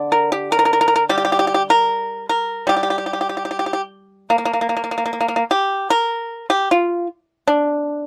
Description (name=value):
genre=chinese traditional, Chinese solo plucked strings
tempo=76 BPM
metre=4/4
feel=rubato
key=unclear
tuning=A4 = 440 Hz
part: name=pipa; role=solo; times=0.0-8.1 s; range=D3 to Bb4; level=-19 LUFS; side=equal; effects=none
room=light reverb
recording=dry, close 1970s-style studio recording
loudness=-19 LUFS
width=mono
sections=0.0-8.1 A section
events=none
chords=none